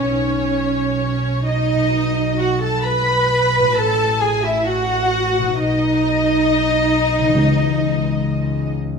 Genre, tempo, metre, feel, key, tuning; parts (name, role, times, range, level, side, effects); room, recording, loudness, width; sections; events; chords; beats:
cinematic, emotional film score for orchestra; 66 BPM; 4/4; rubato; A4 = 441 Hz
warm studio violin section; melody; 0.0-8.7 s; C#5 to B5; -25 LUFS; left 4 dB
dark studio violin section; second line; 0.0-8.7 s; C#5 to B5; -23 LUFS; left 2 dB
dark studio viola section; accompaniment; 0.0-8.7 s; C#4 to B4; -23 LUFS; right 2 dB
concert harp; arpeggios; 0.0-9.0 s; A2 to G#4; -25 LUFS; left 13 dB
rich studio double bass section; bass; 0.0-9.0 s; A1 to C#2; -23 LUFS; right 4 dB
warm studio cello section; bass; 0.0-8.7 s; C#4 to B4; -22 LUFS; right 3 dB
timpani; percussion; 7.3-8.7 s; C#3; -22 LUFS; left 1 dB
moderate scoring stage reverb, RT60 1.8 s; -15 LUFS; side -5 dB against mid
0.0-9.0 A section
0.1 G#m/B; 1.9 B; 3.8 F#m/A; 5.6 G#m/B; 7.4 C#m7
0.06 1.00 | 1.93 2.85 3.77 4.67 | 5.56 6.46 7.36 8.27